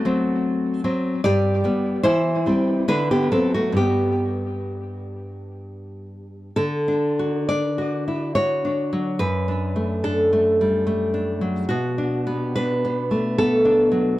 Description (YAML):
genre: romantic piece for solo classical guitar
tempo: 63-76 BPM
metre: 3/4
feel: rubato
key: G major, D major from 6.6 s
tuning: A4 = 440 Hz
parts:
  - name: nylon-string guitar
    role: solo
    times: 0.0-14.2 s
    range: F#2 to D5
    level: -19 LUFS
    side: equal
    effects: tape echo
room: light reverb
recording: dry, close 1970s-style studio recording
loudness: -19 LUFS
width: side -16 dB against mid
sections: 0.0-6.6 A section; 6.6-14.2 B section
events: none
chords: 0.0 F#dim; 1.2 G; 2.0 C/E; 2.9 D7; 3.8 G; 6.6 D; 9.2 D/F#; 11.7 Bm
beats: 0.45 | 1.24 2.04 2.88 | 3.79 4.72 5.64 | 6.57 7.50 8.36 | 9.21 10.05 10.87 | 11.69 12.56 13.38 | 14.18